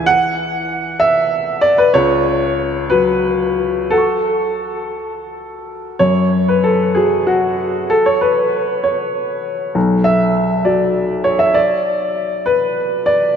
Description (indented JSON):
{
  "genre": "neoclassical minimalist piano",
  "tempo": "56-68 BPM (dotted quarters)",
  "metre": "6/8",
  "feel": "rubato",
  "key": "unclear",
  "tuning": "A4 = 439 Hz",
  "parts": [
    { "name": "clear upright piano", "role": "solo", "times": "0.0-13.4 s", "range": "B1 to C#6", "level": "-14 LUFS", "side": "equal", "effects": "tape echo" }
  ],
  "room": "wet lush hall reverb, RT60 2.8 s",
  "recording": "dreamy mix soaked in reverb",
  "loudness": "-13 LUFS",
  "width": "side -7 dB against mid",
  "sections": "0.0-6.0 A section; 6.0-13.4 A section",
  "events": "none",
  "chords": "0.0 N.C.; 1.9 A6/C#; 6.0 N.C.; 9.8 Bm",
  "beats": "| 0.07 1.00 | 1.94 2.90 | 3.93 4.96 | 6.00 6.97 | 7.90 8.84 | 9.75 10.66 | 11.55 12.46"
}